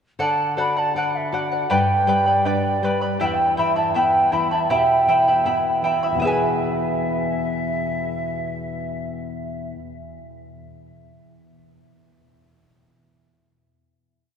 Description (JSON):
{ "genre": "andean folk, Andean ensemble", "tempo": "80 BPM", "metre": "2/4", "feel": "straight", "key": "E minor", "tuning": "A4 = 440 Hz", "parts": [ { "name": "mellow large quena", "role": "melody", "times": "0.2-9.8 s", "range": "D5 to B5", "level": "-21 LUFS", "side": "right 1 dB", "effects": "none" }, { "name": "charango", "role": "accompaniment", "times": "0.2-9.9 s", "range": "E4 to B5", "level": "-24 LUFS", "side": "right 1 dB", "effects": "none" }, { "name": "nylon-string guitar", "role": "accompaniment", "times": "0.2-9.9 s", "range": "E2 to D5", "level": "-26 LUFS", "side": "left 3 dB", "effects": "none" } ], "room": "wet cathedral reverb, RT60 5.3 s", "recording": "recorded in a church or concert hall", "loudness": "-18 LUFS", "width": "side -7 dB against mid", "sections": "0.2-6.2 A section; 6.2-9.2 final chord", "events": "none", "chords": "0.2 D; 1.7 G; 3.2 Em; 6.2 E", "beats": "| 0.19 0.94 | 1.69 2.44 | 3.19 3.94 | 4.69 5.44 | 6.19 6.93 | 7.68 8.42" }